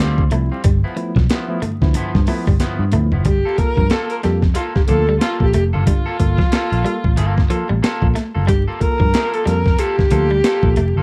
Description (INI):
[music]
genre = funk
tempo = 92 BPM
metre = 4/4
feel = swing 60% on 16ths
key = unclear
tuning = A4 = 443 Hz
[part]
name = electric guitar at the edge of break-up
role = accompaniment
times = 0.0-11.0 s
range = F3 to A4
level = -29 LUFS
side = equal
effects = spring reverb
[part]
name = tine electric piano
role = stabs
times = 0.0-11.0 s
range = G2 to A4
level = -28 LUFS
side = equal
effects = overdrive
[part]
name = vintage muted picked electric bass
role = bass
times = 0.0-11.0 s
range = F1 to G2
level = -20 LUFS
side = equal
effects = none
[part]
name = breakbeat sampler-style drum kit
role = drums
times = 0.2-10.9 s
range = hi-hat, kick drum, snare drum, toms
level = -20 LUFS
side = equal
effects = none
[part]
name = electric guitar at the edge of break-up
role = riff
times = 0.3-10.9 s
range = F3 to A3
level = -28 LUFS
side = equal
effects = none
[part]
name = rich viola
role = melody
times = 3.3-11.0 s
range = F4 to Bb4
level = -23 LUFS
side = equal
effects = none
[sound]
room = little or no reverb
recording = dry, close 1970s-style studio recording, vinyl crackle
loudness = -17 LUFS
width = mono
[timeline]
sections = 0.0-3.3 A section; 3.3-11.0 B section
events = drum fill 2.6-3.3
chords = 0.0 Dm11; 0.6 G13; 3.3 Gm9